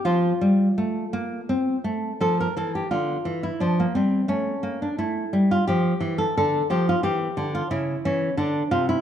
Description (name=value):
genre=classical, baroque-style dance for nylon-string guitar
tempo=87 BPM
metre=3/4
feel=rubato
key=D minor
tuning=A4 = 440 Hz
part: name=nylon-string guitar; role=solo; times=0.0-9.0 s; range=C3 to Bb4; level=-21 LUFS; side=equal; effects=none
room=moderate recital hall reverb, RT60 1.6 s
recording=dark, warm production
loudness=-21 LUFS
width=side -9 dB against mid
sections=0.0-2.2 A section; 2.2-9.0 A section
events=none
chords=0.0 F; 2.2 Dm; 3.6 F5; 4.3 A5; 6.4 Dm; 7.7 C#m; 8.4 Cadd9